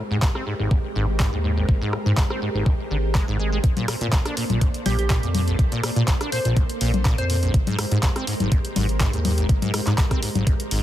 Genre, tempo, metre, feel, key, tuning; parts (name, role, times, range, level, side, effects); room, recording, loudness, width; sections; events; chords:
acid house; 123 BPM; 4/4; straight; A4 = 441 Hz
string machine, full ensemble; sustained chords; 0.0-10.8 s; Ab3 to D5; -30 LUFS; right 1 dB; ensemble chorus, sidechain pumping
acid bass, saw; riff; 0.0-10.8 s; Ab1 to D4; -27 LUFS; equal; ensemble chorus, sidechain pumping, ping-pong delay
saturated sub bass; bass; 0.1-10.8 s; Ab1 to Bb2; -23 LUFS; equal; sidechain pumping
electronic kick drum; drums; 0.2-10.6 s; -20 LUFS; equal
punchy analog drum machine; drums; 0.2-10.8 s; congas, handclaps, hi-hat, rim click; -27 LUFS; left 3 dB
glassy wavetable pluck; melody; 4.9-7.6 s; G4 to C5; -31 LUFS; right 1 dB; chorus, cassette tape, dub echo
digital ambience; dense, heavily limited modern master; -19 LUFS; side -13 dB against mid
0.0-10.8 A section
0.0 Abmaj9; 3.6 Bbmaj9; 7.5 Abmaj9